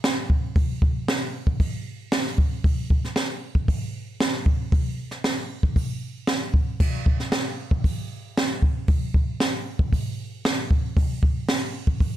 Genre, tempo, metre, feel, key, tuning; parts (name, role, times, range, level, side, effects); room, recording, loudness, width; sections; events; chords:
rock; 115 BPM; 4/4; straight
jazz brush drum kit; drums; 0.0-12.1 s; crash cymbal, hi-hat, kick drum, snare drum; -21 LUFS; equal
little or no reverb; dark, warm production; -22 LUFS; side -13 dB against mid
0.0-12.2 A section